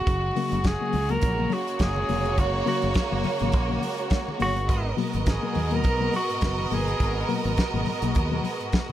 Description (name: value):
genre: disco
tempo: 104 BPM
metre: 4/4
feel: swing 56% on 16ths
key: G# minor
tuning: A4 = 442 Hz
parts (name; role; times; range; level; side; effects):
- breathy tenor saxophone; melody; 0.0-7.3 s; F#4 to A#4; -28 LUFS; equal; none
- rich studio violin section; second line; 0.0-8.9 s; A#3 to D#5; -29 LUFS; right 4 dB; none
- rich studio string section; sustained chords; 0.0-8.9 s; B2 to F#4; -34 LUFS; equal; none
- fingered electric bass; bass; 0.1-8.4 s; E#1 to D#2; -28 LUFS; equal; none
- warm soul drum kit; drums; 0.1-8.9 s; hi-hat, kick drum, snare drum; -27 LUFS; equal; none
- congas; percussion; 0.1-8.9 s; none; -36 LUFS; left 4 dB; none
- mellow reed electric piano; accompaniment; 0.4-8.9 s; G#2 to A#3; -30 LUFS; left 6 dB; fast tremolo
room: small room ambience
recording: none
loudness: -22 LUFS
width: side -12 dB against mid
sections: 0.0-8.9 A section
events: none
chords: 0.1 F#; 4.7 G#m9